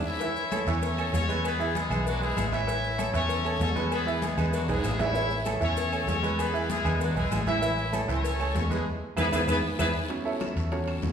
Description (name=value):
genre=latin, salsa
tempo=194 BPM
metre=4/4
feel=straight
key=A major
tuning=A4 = 439 Hz
part: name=brilliant horn section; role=melody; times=0.1-9.9 s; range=F#3 to E5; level=-30 LUFS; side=left 2 dB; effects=none
part: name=bright baby grand piano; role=accompaniment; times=0.2-11.1 s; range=E3 to E5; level=-31 LUFS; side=right 4 dB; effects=none
part: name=congas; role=percussion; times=0.2-11.1 s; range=none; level=-36 LUFS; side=left 2 dB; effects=none
part: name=cowbell and bongos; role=percussion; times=0.2-11.1 s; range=none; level=-38 LUFS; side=left 7 dB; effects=none
part: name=guiro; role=percussion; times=0.2-11.1 s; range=none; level=-46 LUFS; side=left 5 dB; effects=none
part: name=maracas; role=percussion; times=0.2-9.9 s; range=none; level=-47 LUFS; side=left 6 dB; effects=none
part: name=claves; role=percussion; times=0.5-11.0 s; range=none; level=-45 LUFS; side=left 4 dB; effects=none
part: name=timbales and agogo bells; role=percussion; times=0.5-11.1 s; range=none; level=-36 LUFS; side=right 4 dB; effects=none
part: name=vintage muted fingered electric bass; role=bass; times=0.7-11.1 s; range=A1 to E2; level=-30 LUFS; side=equal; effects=none
room=wet recital hall reverb, RT60 1.3 s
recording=recorded in a church or concert hall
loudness=-25 LUFS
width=side -8 dB against mid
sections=0.2-10.1 A section; 10.1-11.1 B section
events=drum fill 0.0, 4.7-5.2, 9.3-10.1; band accent 0.0, 8.9-10.1; grand piano solo 10.1-11.1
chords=0.2 A; 1.4 E; 2.7 A; 3.9 E; 5.2 A; 6.4 E; 7.6 A; 8.9 E; 10.1 A6